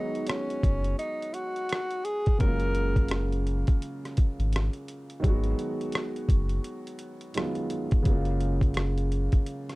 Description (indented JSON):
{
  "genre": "lo-fi hip hop",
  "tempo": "85 BPM",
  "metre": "4/4",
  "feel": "swing 60% on 16ths",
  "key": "G# dorian",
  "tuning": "A4 = 440 Hz",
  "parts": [
    { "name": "breathy tenor saxophone", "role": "melody", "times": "0.0-3.4 s", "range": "C#4 to A#4", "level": "-32 LUFS", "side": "equal", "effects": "low-pass filter, analog delay" },
    { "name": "felt-muted upright piano", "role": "accompaniment", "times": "0.0-9.8 s", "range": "C#3 to F#4", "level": "-33 LUFS", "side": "right 1 dB", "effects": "cassette tape, low-pass filter" },
    { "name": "boom bap sampler-style drum kit", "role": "drums", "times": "0.2-9.8 s", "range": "hi-hat, kick drum, rim click", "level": "-25 LUFS", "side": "equal", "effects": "none" },
    { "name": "sub bass with octave", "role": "bass", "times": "0.6-9.3 s", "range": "F#1 to G#1", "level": "-28 LUFS", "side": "equal", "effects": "none" }
  ],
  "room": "light reverb",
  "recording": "dark, warm production",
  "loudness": "-25 LUFS",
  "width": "side -22 dB against mid",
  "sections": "0.0-9.8 A section",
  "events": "break 9.5",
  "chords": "0.0 G#m7; 2.4 F#maj9; 5.2 G#m7; 8.1 F#maj9",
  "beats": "0.29 1.00 1.71 | 2.41 3.12 3.82 4.53 | 5.24 5.94 6.65 7.35 | 8.06 8.77 9.47"
}